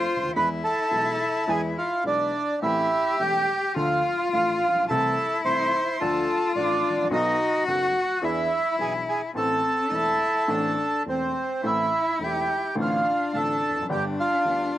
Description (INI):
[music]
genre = tango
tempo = 107 BPM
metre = 4/4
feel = rubato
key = A minor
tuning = A4 = 440 Hz
[part]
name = bandoneon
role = melody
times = 0.0-14.8 s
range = C4 to C6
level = -24 LUFS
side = right 2 dB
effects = none
[part]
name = rich cello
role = second line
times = 0.0-14.8 s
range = C4 to G4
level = -28 LUFS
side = left 4 dB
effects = slapback echo
[part]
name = warm baby grand piano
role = accompaniment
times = 0.0-14.7 s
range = E1 to A4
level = -30 LUFS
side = equal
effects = none
[sound]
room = light reverb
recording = recorded outdoors, with no room sound, vinyl crackle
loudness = -22 LUFS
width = side -13 dB against mid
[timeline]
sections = 0.0-11.6 A section; 11.6-14.8 A section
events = none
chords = 0.4 E; 2.6 Am; 3.8 Dm; 4.9 Am/C; 6.0 Dm; 7.1 B7; 8.2 E7; 9.4 Am; 12.8 Dm7/A; 13.9 G